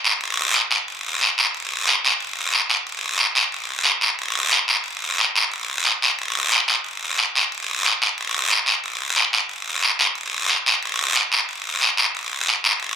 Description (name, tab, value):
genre	latin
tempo	181 BPM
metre	4/4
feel	straight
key	none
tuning	none
part	guiro	percussion	0.0-13.0 s	none	-18 LUFS	equal	none
room	light reverb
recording	none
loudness	-18 LUFS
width	side -8 dB against mid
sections	0.0-2.2 A section; 2.2-12.8 B section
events	none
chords	none